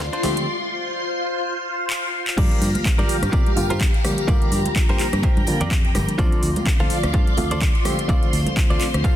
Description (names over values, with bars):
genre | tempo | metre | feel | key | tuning
filtered disco house | 126 BPM | 4/4 | swing 57% on 16ths | G minor | A4 = 440 Hz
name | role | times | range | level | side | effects
phased string machine | sustained chords | 0.0-9.2 s | F4 to C6 | -26 LUFS | left 1 dB | ensemble chorus, phaser, sidechain pumping
fingered electric bass | bass | 0.0-9.0 s | G1 to C3 | -25 LUFS | equal | tube saturation, sidechain pumping
house drum kit | drums | 0.0-9.2 s | crash cymbal, handclaps, hi-hat, rim click, snare drum | -28 LUFS | equal | overdrive, high-pass filter on snare, high-pass filter on hats, high-pass filter on cymbals, high-pass filter on room
tambourine and congas | percussion | 0.0-9.2 s | none | -32 LUFS | right 2 dB | sidechain pumping on perc
direct-recorded clean electric guitar | riff | 0.1-9.2 s | D4 to F5 | -30 LUFS | right 1 dB | sidechain pumping
bright reed electric piano | accompaniment | 0.2-9.2 s | D3 to G4 | -26 LUFS | equal | fast tremolo, phaser, sidechain pumping
electronic kick drum | drums | 2.4-9.2 s | none | -20 LUFS | equal | high-pass filter on kick, high-pass filter on room
room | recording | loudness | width
light reverb | dense, heavily limited modern master | -18 LUFS | side -11 dB against mid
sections
0.0-2.4 A section; 2.4-9.2 B section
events
build-up 0.0-2.4; drum fill 0.0-0.5, 1.9-2.4; break 0.5-2.4; drop 2.4-9.2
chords
0.0 Dm7; 2.4 Gm7; 6.2 Dm7